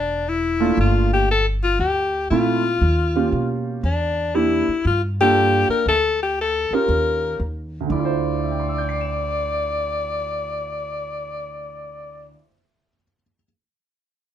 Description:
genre	jazz, small-group swing and bop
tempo	118 BPM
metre	4/4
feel	swing 66% on 8ths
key	D minor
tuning	A4 = 440 Hz
part	breathy alto saxophone	melody	0.0-12.4 s	D4 to D5	-21 LUFS	left 3 dB	none
part	upright bass	bass	0.0-12.3 s	E1 to B2	-24 LUFS	equal	none
part	warm baby grand piano	accompaniment	0.6-13.5 s	D2 to E7	-22 LUFS	right 5 dB	none
room	moderate studio reverb, RT60 0.6 s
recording	none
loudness	-18 LUFS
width	side -10 dB against mid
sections	0.0-7.9 A section; 7.9-12.0 B section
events	none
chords	0.0 Bbmaj7#11/E; 0.8 Gm7; 1.8 Dm7; 2.8 Eb7; 3.8 Em7b5; 4.9 Gm7; 5.9 Dm; 6.9 Eb7; 7.9 Dm7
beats	0.27 0.78 1.29 | 1.80 2.31 2.82 3.33 | 3.84 4.35 4.86 5.36 | 5.87 6.38 6.89 7.40 | 7.91 8.42 8.93 9.44 | 9.94 10.45 10.96 11.47

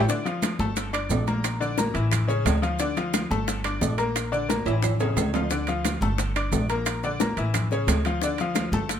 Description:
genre	latin, salsa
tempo	177 BPM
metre	4/4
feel	straight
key	D minor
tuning	A4 = 439 Hz
part	bright upright piano	accompaniment	0.0-9.0 s	C#3 to D6	-28 LUFS	left 3 dB	none
part	upright bass	bass	0.0-9.0 s	G1 to D2	-27 LUFS	equal	none
part	bongos	percussion	0.1-9.0 s	none	-32 LUFS	left 8 dB	none
part	congas	percussion	0.1-9.0 s	none	-31 LUFS	left 1 dB	none
part	maracas	percussion	0.1-9.0 s	none	-36 LUFS	right 7 dB	none
part	timbales	percussion	0.3-9.0 s	none	-31 LUFS	right 7 dB	none
part	claves	percussion	0.4-8.7 s	none	-37 LUFS	right 7 dB	none
room	light reverb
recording	minimal, uncompressed stereo recording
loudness	-22 LUFS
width	side -9 dB against mid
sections	0.1-9.0 A section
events	drum fill 4.7-5.5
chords	0.1 Dm; 0.8 Gmadd9; 1.4 Bb; 2.1 A; 2.8 Dm; 3.5 Gmadd9; 4.2 Bb; 4.8 A; 5.5 Dm; 6.2 Gmadd9; 6.9 Bb; 7.5 A; 8.2 Dm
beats	| 0.09 0.43 0.77 1.11 | 1.45 1.78 2.12 2.46 | 2.80 3.14 3.48 3.82 | 4.16 4.50 4.83 5.17 | 5.51 5.85 6.19 6.53 | 6.87 7.20 7.54 7.88 | 8.22 8.56 8.89

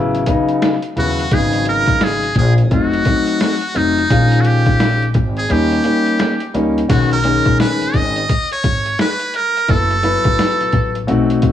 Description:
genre	hip hop, jazz-hop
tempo	86 BPM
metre	4/4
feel	swing 62% on 16ths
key	unclear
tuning	A4 = 440 Hz
part	dark grand piano	accompaniment	0.0-11.5 s	C#3 to B4	-17 LUFS	left 2 dB	none
part	upright bass	bass	0.0-11.5 s	F1 to E2	-18 LUFS	left 1 dB	none
part	boom bap sampler-style drum kit	drums	0.1-11.5 s	crash cymbal, hi-hat, kick drum, snare drum	-19 LUFS	equal	overdrive
part	trumpet with metal mute	melody	1.0-11.1 s	Eb4 to D#5	-18 LUFS	right 1 dB	none
room	light reverb, small room ambience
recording	worn, warbling old tape, cassette tape, warbly pitch drift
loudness	-13 LUFS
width	side -10 dB against mid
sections	0.0-6.9 A section; 6.9-11.5 B section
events	kick muted 5.5-6.9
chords	0.0 A; 1.3 G#m9; 2.7 F7b9; 4.1 A#m7; 5.5 D#7; 6.9 B69; 9.7 F#m7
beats	0.62 | 1.32 2.02 2.71 3.41 | 4.11 4.81 5.50 6.20 | 6.90 7.60 8.29 8.99 | 9.69 10.39 11.09

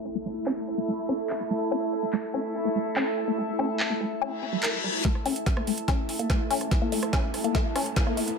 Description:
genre	psychedelic trance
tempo	144 BPM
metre	4/4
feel	straight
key	unclear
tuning	A4 = 440 Hz
part	bubbling stepped-filter texture	sustained chords	0.0-8.4 s	A3 to E4	-32 LUFS	equal	chorus, built-in reverb, sidechain pumping
part	impact, reverse cymbal and riser	sound effects	0.0, 4.4-8.4 s	none	-36 LUFS	left 4 dB	none
part	warbly tape-like pad	texture	0.0-8.4 s	E4 to A5	-33 LUFS	right 2 dB	chorus, built-in reverb, phaser, sidechain pumping
part	woody wave-folded pluck	riff	0.2-8.2 s	G3 to Bb4	-30 LUFS	moving between left 8 dB and right 2 dB	chorus, auto-pan, sidechain pumping, dub echo
part	garage drum kit	drums	0.5-8.4 s	handclaps, hi-hat, rim click, snare drum	-32 LUFS	right 1 dB	overdrive, high-pass filter on snare, low-pass filter on snare, studio ambience, high-pass filter on hats, low-pass filter on hats, high-pass filter on cymbals, low-pass filter on cymbals
part	electronic kick drum	drums	5.0-8.0 s	none	-25 LUFS	equal	overdrive, studio ambience
room	moderate digital room reverb, RT60 1.1 s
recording	low-pass filter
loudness	-25 LUFS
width	side -5 dB against mid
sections	0.0-5.0 A section; 5.0-8.4 B section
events	filter sweep on drum 0.0-5.0; filter sweep on synth texture 0.0-5.0; filter sweep 0.0-5.0; reverse cymbal 4.4-5.0; build-up 5.0-8.4; drum fill 5.0-8.4; riser 5.0-8.4; filter sweep on synth arpeggio sound 5.0-8.4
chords	0.0 A5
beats	| 0.05 0.46 0.88 1.30 | 1.71 2.13 2.55 2.96 | 3.38 3.80 4.21 4.63 | 5.05 5.46 5.88 6.30 | 6.71 7.13 7.55 7.96 | 8.38

